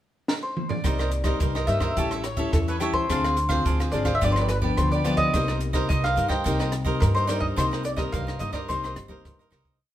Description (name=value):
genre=samba and choro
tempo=107 BPM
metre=4/4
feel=straight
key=C minor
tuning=A4 = 441 Hz
part: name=mandolin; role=melody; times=0.3-9.5 s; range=A4 to G5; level=-28 LUFS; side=equal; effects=none
part: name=compact cocktail drum kit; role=drums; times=0.3-9.8 s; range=hi-hat, kick drum, rim click, snare drum, toms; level=-29 LUFS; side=equal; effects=none
part: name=cavaquinho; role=accompaniment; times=0.8-9.8 s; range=D4 to F5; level=-31 LUFS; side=right 4 dB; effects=none
part: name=nylon-string guitar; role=accompaniment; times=0.8-9.8 s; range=G2 to F4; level=-29 LUFS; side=left 4 dB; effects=none
part: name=upright bass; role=bass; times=0.8-9.8 s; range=G1 to G2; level=-27 LUFS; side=equal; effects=none
room=moderate stone room reverb, RT60 1.1 s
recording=band playing live in one room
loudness=-22 LUFS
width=side -12 dB against mid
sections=0.0-0.8 pickup bar; 0.8-9.8 A section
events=drum fill 0.3-0.8; fade-out 7.6-9.8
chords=0.0 N.C.; 0.8 Cm7; 2.0 A7; 3.1 Dm7b5; 4.2 G7; 5.3 Cm7